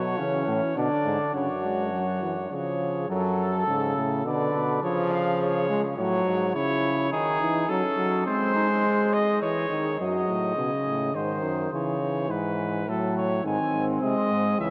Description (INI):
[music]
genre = classical, imitative canzona for brass ensemble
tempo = 104 BPM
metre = 3/4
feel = straight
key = F# minor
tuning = A4 = 441 Hz
[part]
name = mellow trumpet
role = melody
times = 0.0-14.7 s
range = G#4 to G#5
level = -31 LUFS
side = equal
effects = none
[part]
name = mellow flugelhorn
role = second line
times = 0.0-10.0, 13.4-14.7 s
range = B#3 to B4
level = -32 LUFS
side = equal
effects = none
[part]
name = clear trombone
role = accompaniment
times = 0.0-14.7 s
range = C#3 to G#3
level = -30 LUFS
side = equal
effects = none
[part]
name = clear euphonium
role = bass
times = 0.0-6.5, 10.0-14.7 s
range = C#2 to C#3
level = -33 LUFS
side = equal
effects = none
[sound]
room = wet cathedral reverb, RT60 6.0 s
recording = in a vast, echoing space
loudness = -26 LUFS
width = mono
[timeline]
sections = 0.0-3.1 A section; 3.1-10.0 B section; 10.0-14.7 A section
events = none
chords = 0.0 F#m; 0.8 G#dim/B; 1.3 C#sus4/F#; 2.5 C#; 3.1 F#m; 4.2 Bm; 4.8 C#; 6.0 F#m/A; 6.5 C#m; 7.7 F#m; 8.3 G#; 9.4 C#m/E; 10.0 D#dim/F#; 11.2 G#; 11.7 C#m; 12.9 A6; 13.4 G#